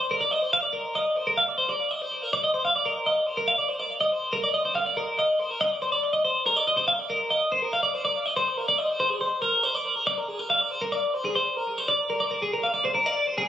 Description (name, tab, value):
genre	rock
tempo	141 BPM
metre	5/4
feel	straight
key	unclear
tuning	A4 = 438 Hz
part	twelve-string electric guitar	solo	0.0-13.5 s	Ab4 to F5	-22 LUFS	equal	wide subtle chorus, tape echo
room	light reverb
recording	recorded on a phone in the room, studio reverb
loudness	-22 LUFS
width	side -11 dB against mid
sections	0.0-9.0 A section; 9.0-13.5 B section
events	none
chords	none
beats	0.10 | 0.53 0.95 1.37 1.79 2.22 | 2.64 3.06 3.48 3.91 4.33 | 4.75 5.18 5.60 6.03 6.45 | 6.88 7.30 7.72 8.15 8.57 | 9.00 9.43 9.85 10.28 10.70 | 11.13 11.56 11.98 12.41 12.84 | 13.26